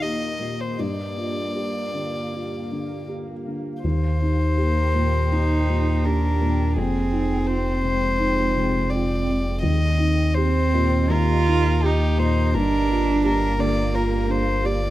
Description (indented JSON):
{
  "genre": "neoclassical piano and strings",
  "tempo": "78-86 BPM",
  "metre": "4/4",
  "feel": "rubato",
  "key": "unclear",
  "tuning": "A4 = 440 Hz",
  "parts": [
    { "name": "warm violin", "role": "melody", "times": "0.0-14.9 s", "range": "G4 to Eb5", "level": "-27 LUFS", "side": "left 2 dB", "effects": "none" },
    { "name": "warm cello", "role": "second line", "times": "0.0-14.9 s", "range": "Ab3 to F4", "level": "-27 LUFS", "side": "right 5 dB", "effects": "none" },
    { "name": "felt-muted upright piano", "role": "accompaniment", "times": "0.0-14.9 s", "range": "Eb2 to G4", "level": "-26 LUFS", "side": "left 1 dB", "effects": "none" },
    { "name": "ethereal airy pad", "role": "sustained chords", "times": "0.0-14.9 s", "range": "Bb3 to G5", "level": "-34 LUFS", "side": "right 2 dB", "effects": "ensemble chorus, built-in reverb" },
    { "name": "sub bass with octave", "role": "bass", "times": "3.8-14.9 s", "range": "F1 to Eb2", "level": "-22 LUFS", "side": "equal", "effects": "none" }
  ],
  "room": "light reverb, small room ambience",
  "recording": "rough home demo mix",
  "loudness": "-19 LUFS",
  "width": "side -15 dB against mid",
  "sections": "0.0-3.8 A section; 3.8-14.9 A section",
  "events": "none",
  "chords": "0.0 Cm7/Eb; 0.8 Gm7; 3.8 Eb; 6.8 Fm7; 9.6 Cm7/Eb; 12.5 Gm7"
}